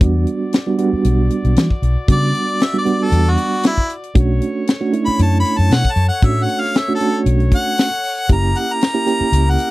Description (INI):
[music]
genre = straight-eighth soul blues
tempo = 116 BPM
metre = 4/4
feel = swing 54% on 16ths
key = B minor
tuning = A4 = 440 Hz
[part]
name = mellow reed electric piano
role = accompaniment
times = 0.0-9.7 s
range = G3 to G4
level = -19 LUFS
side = right 4 dB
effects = fast tremolo
[part]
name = clear horn section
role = sustained chords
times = 0.0-9.7 s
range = E4 to D5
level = -31 LUFS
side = left 2 dB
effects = none
[part]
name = vintage muted fingered electric bass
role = bass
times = 0.0-9.6 s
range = F#1 to E3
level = -15 LUFS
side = equal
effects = none
[part]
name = tight funk drum kit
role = drums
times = 0.0-9.7 s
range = hi-hat, kick drum, snare drum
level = -15 LUFS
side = left 1 dB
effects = none
[part]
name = warm harmonica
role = melody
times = 2.1-9.7 s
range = E4 to B5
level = -20 LUFS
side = left 1 dB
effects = none
[sound]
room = little or no reverb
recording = dry, close 1970s-style studio recording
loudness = -14 LUFS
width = side -18 dB against mid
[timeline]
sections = 0.0-9.7 A section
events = harmonica solo 0.0-9.7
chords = 0.0 Em9; 4.2 Bm9; 8.3 F#7b9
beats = | 0.01 0.53 1.05 1.57 | 2.09 2.60 3.12 3.64 | 4.16 4.67 5.19 5.71 | 6.23 6.74 7.26 7.78 | 8.29 8.81 9.32